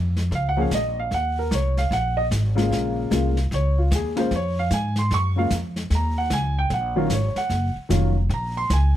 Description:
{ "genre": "jazz piano trio", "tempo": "150 BPM", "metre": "4/4", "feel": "swing 64% on 8ths", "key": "Bb minor", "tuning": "A4 = 440 Hz", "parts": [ { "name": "upright bass", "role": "bass", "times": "0.0-9.0 s", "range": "F1 to Ab2", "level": "-22 LUFS", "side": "equal", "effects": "none" }, { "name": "jazz brush drum kit", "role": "drums", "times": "0.2-9.0 s", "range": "brushed snare drum, hi-hat, kick drum, snare drum", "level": "-30 LUFS", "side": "left 1 dB", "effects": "none" }, { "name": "warm baby grand piano", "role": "melody", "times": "0.3-9.0 s", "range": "Db3 to Db6", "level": "-24 LUFS", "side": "equal", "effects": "none" } ], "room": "little or no reverb", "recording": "close, detailed microphones", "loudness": "-20 LUFS", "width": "side -12 dB against mid", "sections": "0.0-9.0 A section", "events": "grand piano solo 0.0-9.0", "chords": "0.0 Bbm; 1.1 Eb5; 2.7 Bbm7; 5.9 Ebm9" }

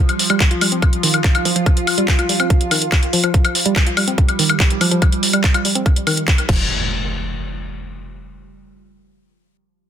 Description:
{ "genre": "psychedelic trance", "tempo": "143 BPM", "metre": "4/4", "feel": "straight", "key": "unclear", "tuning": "A4 = 441 Hz", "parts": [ { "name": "evolving wavetable pad", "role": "sustained chords", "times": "0.0-6.5 s", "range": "F3 to F4", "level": "-24 LUFS", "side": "right 2 dB", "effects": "chorus, built-in reverb, sidechain pumping" }, { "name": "woody wave-folded pluck", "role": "riff", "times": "0.0-6.7 s", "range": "Eb3 to F4", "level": "-22 LUFS", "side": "moving between left 3 dB and right 6 dB", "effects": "chorus, auto-pan, sidechain pumping, dub echo" }, { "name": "garage drum kit", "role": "drums", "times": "0.1-6.6 s", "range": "crash cymbal, handclaps, hi-hat, woodblock", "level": "-18 LUFS", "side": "left 2 dB", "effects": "none" }, { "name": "electronic kick drum", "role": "drums", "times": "0.4-6.6 s", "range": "none", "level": "-15 LUFS", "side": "equal", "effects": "none" }, { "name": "tight sequencer bass", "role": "bass", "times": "6.5-6.7 s", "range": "F1", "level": "-23 LUFS", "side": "equal", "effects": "none" }, { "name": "impact", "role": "sound effects", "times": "6.5-8.2 s", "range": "none", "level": "-26 LUFS", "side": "equal", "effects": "none" } ], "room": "little or no reverb", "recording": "dense, heavily limited modern master", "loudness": "-14 LUFS", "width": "side -9 dB against mid", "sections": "0.0-6.7 A section; 6.7-8.4 B section", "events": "none", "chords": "0.0 F5; 6.5 N.C." }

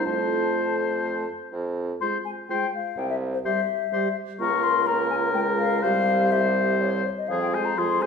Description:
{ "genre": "quick classical-period movement for wind quintet", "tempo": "125 BPM", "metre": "3/4", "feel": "straight", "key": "F minor", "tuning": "A4 = 439 Hz", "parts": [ { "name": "mellow hollow silver concert flute", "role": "melody", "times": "0.0-8.1 s", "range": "C5 to Db6", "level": "-26 LUFS", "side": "left 7 dB", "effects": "none" }, { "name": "clear oboe", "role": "second line", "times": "0.0-8.1 s", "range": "Ab4 to C5", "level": "-28 LUFS", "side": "left 4 dB", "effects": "none" }, { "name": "mellow French horn", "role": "accompaniment", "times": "0.0-8.1 s", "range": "F3 to Bb3", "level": "-31 LUFS", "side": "equal", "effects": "none" }, { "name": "mellow clarinet", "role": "accompaniment", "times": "0.0-8.1 s", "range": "F4 to Ab4", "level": "-31 LUFS", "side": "right 6 dB", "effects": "none" }, { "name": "clear bassoon", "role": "bass", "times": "0.0-8.1 s", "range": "C2 to F2", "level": "-28 LUFS", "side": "right 2 dB", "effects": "none" } ], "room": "wet recital hall reverb, RT60 1.6 s", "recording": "minimal, uncompressed stereo recording", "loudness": "-22 LUFS", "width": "side -6 dB against mid", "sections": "0.0-1.5 A section; 1.5-8.1 B section", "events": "none", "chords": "0.1 F; 1.5 Fm; 3.0 C; 4.4 Bbm/Db; 5.8 C; 7.3 Fm" }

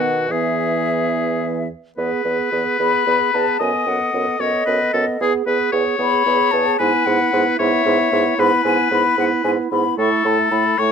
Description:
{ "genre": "quick classical-period movement for wind quintet", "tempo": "75 BPM (dotted quarters)", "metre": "6/8", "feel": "straight", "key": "E major", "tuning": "A4 = 440 Hz", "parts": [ { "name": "concert flute", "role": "melody", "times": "0.0-10.9 s", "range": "D#5 to C#6", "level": "-20 LUFS", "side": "left 8 dB", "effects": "none" }, { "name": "bright oboe", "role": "second line", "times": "0.0-10.9 s", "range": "F#4 to D#5", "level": "-20 LUFS", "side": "left 4 dB", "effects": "none" }, { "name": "clear French horn", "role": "accompaniment", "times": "0.0-10.9 s", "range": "D#3 to B3", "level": "-26 LUFS", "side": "right 1 dB", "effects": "none" }, { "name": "clear clarinet", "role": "accompaniment", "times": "0.0-10.9 s", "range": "B3 to A4", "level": "-24 LUFS", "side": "right 10 dB", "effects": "none" }, { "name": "mellow bassoon", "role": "bass", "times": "0.0-10.9 s", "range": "E2 to B2", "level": "-22 LUFS", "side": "right 3 dB", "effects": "none" } ], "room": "light reverb", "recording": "close, detailed microphones", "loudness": "-16 LUFS", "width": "side -7 dB against mid", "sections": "0.0-2.0 A section; 2.0-10.9 B section", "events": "none", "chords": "0.3 E; 3.6 B7/F#; 5.2 E; 6.8 E/G#; 10.0 A" }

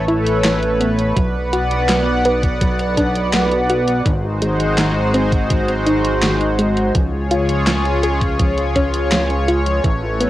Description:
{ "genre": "synthwave", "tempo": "83 BPM", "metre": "4/4", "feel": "straight", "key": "unclear", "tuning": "A4 = 440 Hz", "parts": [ { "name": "chorused pulse-width pad", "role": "sustained chords", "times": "0.0-10.3 s", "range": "G#3 to F#5", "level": "-18 LUFS", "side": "equal", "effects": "sidechain pumping, cassette tape" }, { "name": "chorused synth bass", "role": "bass", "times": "0.0-10.3 s", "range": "G#1 to C#2", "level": "-21 LUFS", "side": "equal", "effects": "tube saturation, sidechain pumping" }, { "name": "impact", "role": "sound effects", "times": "0.0-1.2 s", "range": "none", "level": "barely audible", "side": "none", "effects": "none" }, { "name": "soft round pluck", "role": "arpeggios", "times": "0.1-10.3 s", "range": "D#3 to B4", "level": "-22 LUFS", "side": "right 1 dB", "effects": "chorus, cassette tape, tape echo, plate reverb" }, { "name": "gated 80s digital drum machine", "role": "drums", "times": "0.1-10.3 s", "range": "handclaps, hi-hat, snare drum", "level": "-21 LUFS", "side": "equal", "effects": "gated reverb, gated reverb snare" }, { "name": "electronic kick drum", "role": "drums", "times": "1.2-10.0 s", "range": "none", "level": "-19 LUFS", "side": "equal", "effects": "none" } ], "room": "light reverb", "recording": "home recording on cassette", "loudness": "-14 LUFS", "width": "side -14 dB against mid", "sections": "0.0-10.3 A section", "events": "impact 0.0-1.2", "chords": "0.0 Aadd9; 1.2 Bm; 4.1 G#7; 6.9 C#" }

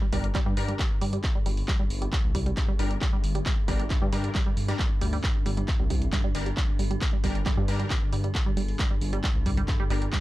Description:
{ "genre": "driving peak-time techno", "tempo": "135 BPM", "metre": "4/4", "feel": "straight", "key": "G minor", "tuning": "A4 = 440 Hz", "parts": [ { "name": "tight sequenced synth", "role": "riff", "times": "0.0-10.2 s", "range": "G3", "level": "-35 LUFS", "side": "right 3 dB", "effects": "chorus, tube saturation, sidechain pumping, analog delay" }, { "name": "metallic inharmonic drone", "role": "drone", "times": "0.1-10.2 s", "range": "G2 to D3", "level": "-36 LUFS", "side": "left 1 dB", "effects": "chorus, built-in reverb, sidechain pumping" }, { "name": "rave stab", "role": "stabs", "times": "0.1-10.0 s", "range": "G3 to Bb4", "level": "-36 LUFS", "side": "left 3 dB", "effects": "chorus, built-in reverb, sidechain pumping, analog delay" }, { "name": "dark detuned saw bass", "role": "bass", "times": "0.1-10.1 s", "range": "G1 to G2", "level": "-29 LUFS", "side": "equal", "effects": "sidechain pumping" }, { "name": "electronic kick drum", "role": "drums", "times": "0.1-10.2 s", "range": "none", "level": "-26 LUFS", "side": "equal", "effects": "none" }, { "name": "punchy analog drum machine", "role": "drums", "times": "0.1-10.2 s", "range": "handclaps, hi-hat", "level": "-35 LUFS", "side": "equal", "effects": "none" } ], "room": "little or no reverb", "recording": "dry, gritty hardware recording, transformer saturation", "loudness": "-24 LUFS", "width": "side -16 dB against mid", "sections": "0.0-10.2 A section", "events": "none", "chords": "0.0 Gm" }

